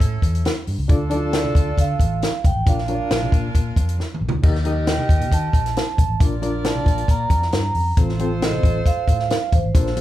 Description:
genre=uptempo 1960s-style soul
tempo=136 BPM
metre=4/4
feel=straight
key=unclear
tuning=A4 = 437 Hz
part: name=bright saxophone section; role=second line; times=0.0-10.0 s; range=C#4 to Eb5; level=-31 LUFS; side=right 1 dB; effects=none
part: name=vintage muted fingered electric bass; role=bass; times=0.0-10.0 s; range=A1 to Eb3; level=-23 LUFS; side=equal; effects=none
part: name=compact cocktail drum kit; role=drums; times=0.0-10.0 s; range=crash cymbal, hi-hat, kick drum, snare drum, toms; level=-19 LUFS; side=equal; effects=none
part: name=congas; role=percussion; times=0.2-10.0 s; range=none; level=-34 LUFS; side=right 2 dB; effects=none
part: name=barky reed electric piano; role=accompaniment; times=0.9-10.0 s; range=Bb3 to Eb5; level=-26 LUFS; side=left 1 dB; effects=overdrive, fast tremolo
part: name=vibraphone with soft mallets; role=melody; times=1.4-10.0 s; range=C5 to Bb5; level=-25 LUFS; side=right 4 dB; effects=none
room=light reverb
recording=band playing live in one room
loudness=-17 LUFS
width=side -14 dB against mid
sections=0.0-10.0 A section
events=drum fill 4.0-4.4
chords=0.0 A7; 0.9 Dm; 2.7 Bb; 4.4 Eb; 6.2 Bb; 8.0 F/A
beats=0.00 0.45 | 0.89 1.33 1.77 2.22 | 2.66 3.10 3.55 3.99 | 4.43 4.87 5.32 5.76 | 6.20 6.65 7.09 7.53 | 7.97 8.42 8.86 9.30 | 9.75

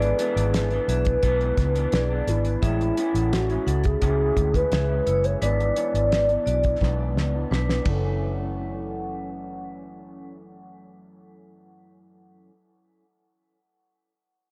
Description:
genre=indie pop, bedroom pop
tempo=86 BPM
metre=4/4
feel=straight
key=F# minor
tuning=A4 = 440 Hz
part: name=hollow clarinet-like synth lead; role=melody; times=0.0-11.8 s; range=E4 to F#5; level=-28 LUFS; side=equal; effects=lush chorus, low-pass filter, dub echo
part: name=vibraphone with medium hard mallets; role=second line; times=0.0-10.3 s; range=C#4 to F#5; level=-36 LUFS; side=equal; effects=subtle chorus, dub echo
part: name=electric guitar through a small old amp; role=accompaniment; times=0.0-12.5 s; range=F#2 to E4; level=-34 LUFS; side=equal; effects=analog chorus, vibrato effect, low-pass filter, dub echo
part: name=vintage muted fingered electric bass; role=bass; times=0.0-12.5 s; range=F#1 to D2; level=-27 LUFS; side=equal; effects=none
part: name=cloth-damped thuddy drum kit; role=drums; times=0.0-8.0 s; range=hi-hat, kick drum, ride cymbal, snare drum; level=-29 LUFS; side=equal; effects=none
room=moderate spring reverb, RT60 2.1 s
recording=echo-heavy mix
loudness=-23 LUFS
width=mono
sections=0.0-8.2 A section; 8.2-11.0 B section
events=filter sweep 0.0-8.2; drum fill 6.8-8.2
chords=0.0 E7/G#; 2.6 Amaj7; 5.4 E7/G#; 7.9 F#m7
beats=0.53 1.23 1.93 | 2.63 3.32 4.02 4.72 | 5.42 6.11 6.81 7.51 | 8.21 8.90 9.60 10.30

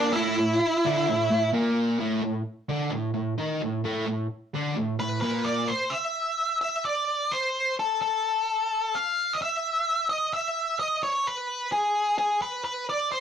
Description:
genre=rock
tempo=130 BPM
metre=4/4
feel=straight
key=unclear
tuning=A4 = 440 Hz
part: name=octave-fuzz lead guitar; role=melody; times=0.0-1.5, 5.0-13.2 s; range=D4 to F5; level=-24 LUFS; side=equal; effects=distortion
part: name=sludgy distorted guitar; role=riff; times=0.0-5.7 s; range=A2 to D#4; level=-26 LUFS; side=equal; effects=overdrive
room=moderate studio reverb, RT60 0.6 s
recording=rough rehearsal-room recording, warm saturation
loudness=-24 LUFS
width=side -8 dB against mid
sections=0.0-2.0 A section; 2.0-5.7 B section; 5.7-13.2 C section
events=none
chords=0.0 A5; 2.0 Asus4; 5.7 N.C.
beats=| 0.16 0.62 1.08 1.54 | 2.00 2.46 2.92 3.39 | 3.85 4.31 4.77 5.24 | 5.70 6.16 6.63 7.09 | 7.55 8.01 8.48 8.94 | 9.40 9.87 10.33 10.79 | 11.25 11.71 12.18 12.64 | 13.10

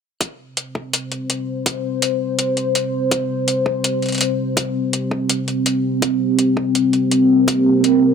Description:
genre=half-time drum and bass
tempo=165 BPM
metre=4/4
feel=swing 54% on 16ths, half-time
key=unclear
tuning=A4 = 439 Hz
part: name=dark analog pad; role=sustained chords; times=0.9-8.1 s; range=C4 to C5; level=-17 LUFS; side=equal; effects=chorus, sidechain pumping
part: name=electronic hi-hat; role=drums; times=0.2-7.9 s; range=none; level=-20 LUFS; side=left 1 dB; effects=none
part: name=electronic kick drum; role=drums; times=0.2-7.6 s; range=none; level=-24 LUFS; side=equal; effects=high-pass filter on kick, high-pass filter on room
room=moderate lush hall reverb, RT60 2.3 s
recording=none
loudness=-16 LUFS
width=side -6 dB against mid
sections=0.2-8.1 A section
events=none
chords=0.2 C5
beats=| 0.20 0.57 0.93 1.30 | 1.66 2.02 2.39 2.75 | 3.11 3.48 3.84 4.21 | 4.57 4.93 5.30 5.66 | 6.02 6.39 6.75 7.11 | 7.48 7.84

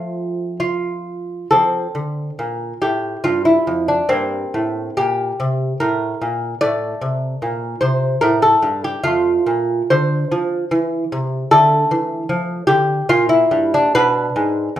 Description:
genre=classical, baroque-style dance for lute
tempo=65-76 BPM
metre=3/4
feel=rubato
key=F major, D minor from 11.5 s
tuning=A4 = 440 Hz
part: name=lute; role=solo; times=0.0-14.8 s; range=E2 to D5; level=-16 LUFS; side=equal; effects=none
room=moderate large studio reverb, RT60 0.8 s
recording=band playing live in one room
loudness=-16 LUFS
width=side -12 dB against mid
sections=0.0-1.5 A section; 1.5-14.8 B section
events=none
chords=0.0 F; 4.1 C5/G; 9.0 F; 11.5 Dm; 13.1 Gm/Bb; 14.0 E7 (rootless)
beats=0.61 | 1.51 2.38 3.23 | 4.08 4.97 5.80 | 6.62 7.42 8.23 | 9.03 9.90 10.71 | 11.51 12.30 13.09 | 13.95 14.77

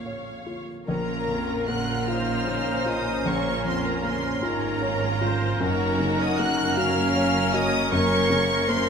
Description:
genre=cinematic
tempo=51 BPM (dotted quarters)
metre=6/8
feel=rubato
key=Bb minor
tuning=A4 = 440 Hz
part: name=rich symphonic violin section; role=melody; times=0.0-8.9 s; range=Db5 to Gb6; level=-29 LUFS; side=equal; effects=none
part: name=clear symphonic violin section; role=second line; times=0.0-8.9 s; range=Db4 to F5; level=-33 LUFS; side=left 3 dB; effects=none
part: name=warm grand piano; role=accompaniment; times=0.0-8.9 s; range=Bb1 to Db5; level=-29 LUFS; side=left 1 dB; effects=none
part: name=rich symphonic cello section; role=bass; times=0.0-8.9 s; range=Gb2 to Bb2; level=-32 LUFS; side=right 4 dB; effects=none
part: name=clear oboe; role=second line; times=0.9-8.9 s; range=Bb4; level=-32 LUFS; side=equal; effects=none
part: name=mellow clarinet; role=second line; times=0.9-8.9 s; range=Db4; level=-34 LUFS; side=right 1 dB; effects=none
part: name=mellow hollow silver concert flute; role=second line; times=0.9-8.9 s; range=Bb4 to Gb5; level=-32 LUFS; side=left 2 dB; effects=none
part: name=clear symphonic viola section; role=accompaniment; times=0.9-8.9 s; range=Bb3 to C5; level=-33 LUFS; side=right 2 dB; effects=none
part: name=mellow French horn section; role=sustained chords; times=0.9-8.9 s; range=Db4 to Bb4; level=-31 LUFS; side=left 2 dB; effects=none
part: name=rich studio double bass section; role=bass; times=0.9-8.9 s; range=Gb1 to Bb1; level=-34 LUFS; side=right 6 dB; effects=none
room=moderate scoring stage reverb, RT60 1.6 s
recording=none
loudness=-21 LUFS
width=side -6 dB against mid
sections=0.9-8.9 A section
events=none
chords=0.0 Bbm; 5.6 Gb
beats=| 0.88 2.08 | 3.26 4.43 | 5.61 6.77 | 7.92

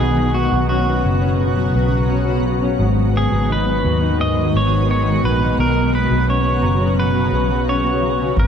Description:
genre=dream pop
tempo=86 BPM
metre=4/4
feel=straight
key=unclear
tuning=A4 = 440 Hz
part: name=pedal steel guitar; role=melody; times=0.0-8.5 s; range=F#4 to D#5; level=-22 LUFS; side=right 1 dB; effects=tape echo
part: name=shimmering ambient pad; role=sustained chords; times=0.0-8.5 s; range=C#3 to F#4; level=-22 LUFS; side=right 1 dB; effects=chorus, built-in reverb
part: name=mellow electric guitar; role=arpeggios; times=0.0-8.5 s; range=G#2 to D#4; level=-20 LUFS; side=left 2 dB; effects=lush chorus, tape echo
part: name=vintage muted fingered electric bass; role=bass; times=0.0-8.5 s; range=F#1 to D#2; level=-20 LUFS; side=equal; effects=none
part: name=celesta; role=texture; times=6.6-8.5 s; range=E#5 to A#5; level=-37 LUFS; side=right 1 dB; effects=none
part: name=booming analog drum machine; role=drums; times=8.4-8.5 s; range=kick drum, toms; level=-14 LUFS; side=equal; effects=none
room=light reverb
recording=dark, warm production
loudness=-15 LUFS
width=side -7 dB against mid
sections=0.0-8.5 A section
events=none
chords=0.0 Bsus2; 2.8 G#m7; 5.6 Bsus2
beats=| 0.00 0.69 1.39 2.09 | 2.79 3.48 4.18 4.88 | 5.58 6.28 6.97 7.67 | 8.37

